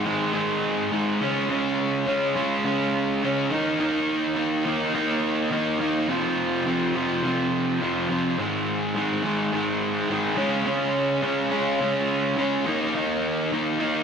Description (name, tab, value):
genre	rock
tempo	105 BPM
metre	4/4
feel	straight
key	unclear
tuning	A4 = 438 Hz
part	overdriven electric guitar	solo	0.0-14.0 s	F2 to Eb4	-22 LUFS	equal	slapback echo
room	wet concert hall reverb, RT60 2.0 s, digital ambience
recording	big arena sound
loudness	-22 LUFS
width	side -6 dB against mid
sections	0.0-14.0 A section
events	none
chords	0.0 Ab5; 1.2 Db5; 3.5 Eb5; 6.1 F5; 8.4 Ab5; 10.4 Db5; 12.7 Eb5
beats	0.35 0.92 | 1.49 2.07 2.64 3.22 | 3.79 4.37 4.94 5.51 | 6.09 6.66 7.23 7.81 | 8.38 8.95 9.52 10.10 | 10.67 11.24 11.81 12.38 | 12.95 13.52